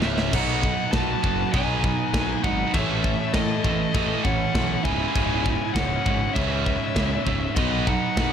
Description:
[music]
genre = heavy metal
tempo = 100 BPM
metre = 4/4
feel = straight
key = unclear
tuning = A4 = 439 Hz
[part]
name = high-gain lead guitar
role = melody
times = 0.0-8.3 s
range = D#5 to A5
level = -29 LUFS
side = left 2 dB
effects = distortion
[part]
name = scooped high-gain guitar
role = riff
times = 0.0-8.3 s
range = C#2 to B4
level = -32 LUFS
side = left 15 dB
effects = distortion
[part]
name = scooped high-gain guitar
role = riff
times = 0.0-8.3 s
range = C#2 to B3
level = -28 LUFS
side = right 11 dB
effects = distortion
[part]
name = scooped high-gain guitar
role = riff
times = 0.0-8.3 s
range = C#2 to B3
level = -32 LUFS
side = left 1 dB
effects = distortion
[part]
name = fuzz picked electric bass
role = bass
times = 0.0-8.3 s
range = C#1 to A2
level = -28 LUFS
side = equal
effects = overdrive
[part]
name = tight metal drum kit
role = drums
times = 0.0-8.3 s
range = china cymbal, crash cymbal, kick drum, snare drum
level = -26 LUFS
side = equal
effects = none
[part]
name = dark smooth lead guitar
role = second line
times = 0.1-8.3 s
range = A3 to F#4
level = -31 LUFS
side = equal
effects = overdrive
[sound]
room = little or no reverb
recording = dark, warm production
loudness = -21 LUFS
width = side -8 dB against mid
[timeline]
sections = 0.3-8.3 A section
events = drum fill 0.0-0.3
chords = 0.3 B; 2.7 A; 4.9 C#m; 7.6 B

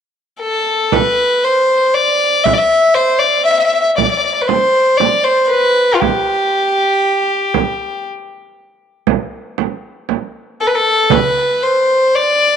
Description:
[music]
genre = Arabic maqam ensemble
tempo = 118 BPM (eighths)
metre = 10/8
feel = straight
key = C maqam ajam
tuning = A4 = 440 Hz
[part]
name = rich violin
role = melody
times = 0.4-12.6 s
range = F4 to E5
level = -12 LUFS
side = left 1 dB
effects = none
[part]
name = frame drum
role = percussion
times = 0.9-11.3 s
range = none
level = -17 LUFS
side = right 11 dB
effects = none
[part]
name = darbuka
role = percussion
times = 11.1-11.3 s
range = none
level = -21 LUFS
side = right 11 dB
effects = none
[sound]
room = wet spring reverb, RT60 2.0 s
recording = 1960s-style stereo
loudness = -12 LUFS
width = side -8 dB against mid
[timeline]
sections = 0.9-12.6 A section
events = none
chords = none

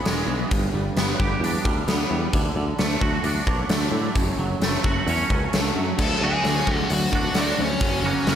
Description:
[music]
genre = quiet-loud alternative rock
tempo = 132 BPM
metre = 4/4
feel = straight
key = unclear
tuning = A4 = 440 Hz
[part]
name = twangy electric guitar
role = arpeggios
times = 0.0-8.4 s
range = F#2 to G#4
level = -27 LUFS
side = right 3 dB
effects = ensemble chorus
[part]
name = picked electric bass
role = bass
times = 0.1-8.4 s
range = E1 to A2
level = -27 LUFS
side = equal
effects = none
[part]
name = big rock drum kit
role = drums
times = 0.1-8.4 s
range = crash cymbal, hi-hat, kick drum, snare drum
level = -23 LUFS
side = equal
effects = none
[part]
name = dark smooth lead guitar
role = melody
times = 6.0-8.4 s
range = C#4 to A5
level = -25 LUFS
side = equal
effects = overdrive, slapback echo
[part]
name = thick fuzz guitar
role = riff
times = 6.0-8.4 s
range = F#2 to A3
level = -26 LUFS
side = left 1 dB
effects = distortion
[sound]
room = moderate lush hall reverb, RT60 1.8 s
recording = big arena sound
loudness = -20 LUFS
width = side -9 dB against mid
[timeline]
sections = 0.0-6.0 A section; 6.0-8.4 B section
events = none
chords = 0.0 E; 0.5 G; 2.3 D; 4.2 F#m; 6.0 D; 7.8 F#

